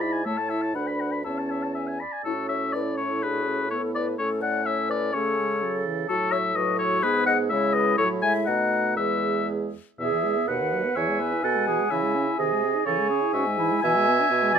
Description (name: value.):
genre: quick classical-period movement for wind quintet.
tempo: 125 BPM.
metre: 2/4.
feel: rubato.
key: A major, E major from 6.1 s.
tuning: A4 = 440 Hz.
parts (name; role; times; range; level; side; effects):
hollow concert flute; melody; 0.0-14.6 s; E4 to B5; -30 LUFS; left 8 dB; none.
warm oboe; second line; 0.0-14.6 s; A4 to B5; -26 LUFS; left 4 dB; none.
dark French horn; accompaniment; 0.0-14.6 s; B2 to E4; -32 LUFS; right 1 dB; none.
warm clarinet; accompaniment; 0.0-14.6 s; C#4 to E5; -28 LUFS; right 8 dB; none.
warm bassoon; bass; 0.0-14.6 s; D2 to C#3; -30 LUFS; right 3 dB; none.
room: light reverb.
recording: close, detailed microphones.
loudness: -22 LUFS.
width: side -7 dB against mid.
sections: 0.0-2.3 A section; 2.3-10.0 A section; 10.0-14.6 B section.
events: none.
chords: 0.3 A; 0.7 Bm/D; 1.3 A/E; 1.8 E; 2.3 A; 3.2 E7/A; 4.2 A; 5.1 A/C#; 6.1 F#m/A; 7.0 G#m7; 7.5 C#m; 8.0 F#m/A; 8.5 B7; 9.0 E; 10.5 B/D#; 11.0 E; 11.9 C#m; 12.4 G#/B#; 12.9 C#m; 13.8 E7/B.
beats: | 0.26 0.75 | 1.25 1.76 | 2.26 2.74 | 3.23 3.71 | 4.19 4.66 | 5.14 5.62 | 6.09 6.56 | 7.04 7.51 | 7.99 8.48 | 8.98 9.49 | 10.00 10.49 | 10.97 11.44 | 11.91 12.39 | 12.86 13.33 | 13.83 14.31.